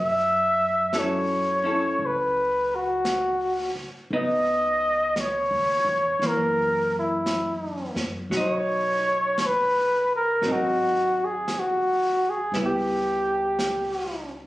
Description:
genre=jazz ballad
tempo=57 BPM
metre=4/4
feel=swing 67% on 8ths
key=unclear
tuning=A4 = 440 Hz
part: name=breathy flugelhorn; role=melody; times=0.0-14.3 s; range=E4 to E5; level=-22 LUFS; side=equal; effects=none
part: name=upright bass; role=bass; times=0.0-14.5 s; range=G#1 to F#2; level=-38 LUFS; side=left 1 dB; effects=none
part: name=vintage hollow-body jazz guitar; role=accompaniment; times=0.9-14.5 s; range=E3 to A4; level=-29 LUFS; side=equal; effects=none
part: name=vintage brush drum kit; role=drums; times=0.9-14.5 s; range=brushed snare drum, hi-hat, snare drum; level=-36 LUFS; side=right 1 dB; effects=none
room=light reverb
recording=recorded on a phone in the room, club reverb, compression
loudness=-22 LUFS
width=side -16 dB against mid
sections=0.0-14.5 A section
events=none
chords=0.0 F#m7; 4.1 C#m9; 6.2 F#7; 8.3 B; 10.4 G#7; 12.5 C#m7b5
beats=0.93 1.98 3.04 | 4.09 5.15 6.20 7.26 | 8.31 9.36 10.42 11.47 | 12.52 13.57

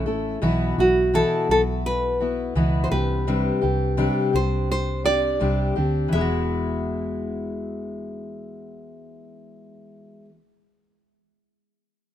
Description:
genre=acoustic pop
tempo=84 BPM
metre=4/4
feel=straight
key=unclear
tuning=A4 = 439 Hz
part: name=fingerpicked steel-string acoustic guitar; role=accompaniment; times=0.0-10.4 s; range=B2 to A4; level=-25 LUFS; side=left 2 dB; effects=none
part: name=vintage muted fingered electric bass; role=bass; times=0.0-10.2 s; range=E1 to D2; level=-26 LUFS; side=right 1 dB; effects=none
part: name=nylon-string guitar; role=melody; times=0.8-10.2 s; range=F#4 to E5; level=-23 LUFS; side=equal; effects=none
room=light reverb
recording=minimal, uncompressed stereo recording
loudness=-20 LUFS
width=side -11 dB against mid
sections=0.0-6.1 A section; 6.1-9.0 B section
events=none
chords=0.4 Bsus4; 2.9 Csus2; 6.1 Eadd9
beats=| 0.42 1.14 1.85 2.56 | 3.27 3.99 4.70 5.41 | 6.13 6.84 7.55 8.27

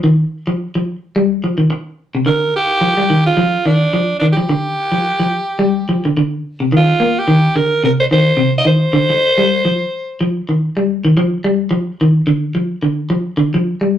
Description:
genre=afrobeat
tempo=108 BPM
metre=4/4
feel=swing 56% on 16ths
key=C minor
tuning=A4 = 442 Hz
part: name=clean electric guitar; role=arpeggios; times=0.0-14.0 s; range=C3 to Bb3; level=-14 LUFS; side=equal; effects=none
part: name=raspy alto saxophone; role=melody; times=2.3-10.3 s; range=D4 to Eb5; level=-15 LUFS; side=right 1 dB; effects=none
room=wet studio reverb, RT60 0.6 s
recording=rough rehearsal-room recording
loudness=-13 LUFS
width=side -10 dB against mid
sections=0.0-6.7 A section; 6.7-14.0 B section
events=none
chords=0.0 Cm (rootless); 2.3 G5; 6.7 Cm; 11.2 G5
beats=| 0.04 0.60 1.16 1.71 | 2.27 2.83 3.38 3.94 | 4.50 5.05 5.61 6.17 | 6.72 7.28 7.83 8.39 | 8.94 9.50 10.05 10.61 | 11.17 11.72 12.28 12.83 | 13.39 13.95

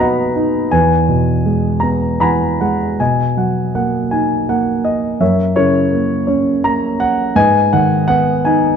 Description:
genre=classical, lyrical solo piano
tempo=82 BPM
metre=3/4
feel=rubato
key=unclear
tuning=A4 = 439 Hz
part: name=dark concert grand piano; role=solo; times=0.0-8.8 s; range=E2 to B5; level=-12 LUFS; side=equal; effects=none
room=moderate scoring stage reverb, RT60 1.6 s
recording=dark, warm production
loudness=-13 LUFS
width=side -7 dB against mid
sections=0.0-3.0 A section; 3.0-8.8 B section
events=none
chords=0.0 B; 0.7 Eadd9; 3.0 Bmaj7; 5.2 F#7; 7.4 G#m7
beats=0.00 | 0.72 1.45 2.21 | 3.00 3.75 4.49 | 5.21 5.92 6.64 | 7.36 8.09

